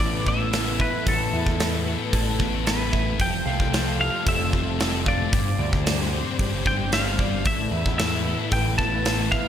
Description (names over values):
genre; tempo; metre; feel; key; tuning
rock, shoegaze and dream pop; 113 BPM; 4/4; straight; A minor; A4 = 440 Hz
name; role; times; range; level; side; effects
twelve-string electric guitar; melody; 0.0-9.5 s; A4 to A5; -28 LUFS; equal; slapback echo
dark studio string section; sustained chords; 0.0-9.5 s; G3 to C5; -34 LUFS; left 1 dB; none
raw garage guitar; riff; 0.0-9.5 s; F3 to F5; -33 LUFS; right 12 dB; overdrive, reverse reverb
thick fuzz guitar; riff; 0.0-9.5 s; G2 to D4; -28 LUFS; left 9 dB; distortion, ensemble chorus
growling picked electric bass; bass; 0.0-9.3 s; F1 to E2; -27 LUFS; equal; overdrive
big rock drum kit; drums; 0.0-9.4 s; hi-hat, kick drum, snare drum; -25 LUFS; equal; none
room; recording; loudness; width
light reverb, studio reverb; none; -21 LUFS; side -9 dB against mid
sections
0.0-9.5 A section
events
none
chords
0.0 Asus2; 3.2 Fadd9; 5.3 Gsus4; 7.5 Asus2